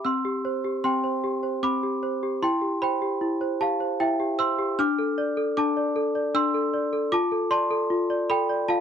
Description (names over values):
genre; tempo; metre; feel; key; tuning
classical, lullaby for celesta; 76 BPM; 3/4; straight; C major; A4 = 441 Hz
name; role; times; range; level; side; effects
worn celesta; solo; 0.0-8.8 s; C4 to F6; -23 LUFS; equal; none
room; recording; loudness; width
little or no reverb; dry, close 1970s-style studio recording; -23 LUFS; side -8 dB against mid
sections
0.1-8.8 A section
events
none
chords
0.1 C; 2.4 C/E; 4.8 Dm; 7.1 Dm/F